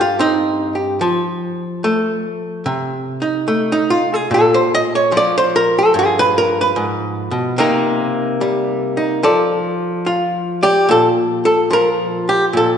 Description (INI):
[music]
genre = solo jazz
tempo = 73 BPM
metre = 4/4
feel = swing 67% on 8ths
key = Bb major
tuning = A4 = 442 Hz
[part]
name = archtop guitar, miked and amplified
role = solo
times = 0.0-12.8 s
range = G2 to Eb5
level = -14 LUFS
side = equal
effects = none
[sound]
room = wet concert hall reverb, RT60 2.1 s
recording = recorded in a church or concert hall, nothing above 10.9 kHz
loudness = -14 LUFS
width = side -8 dB against mid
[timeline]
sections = 0.0-10.9 A section; 10.9-12.8 B section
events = hollow-body jazz guitar solo 0.0-10.9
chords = 0.0 C5; 1.0 F7; 4.3 Bb5; 5.9 G7b9; 7.6 Cm7; 9.2 F6; 10.9 Bb5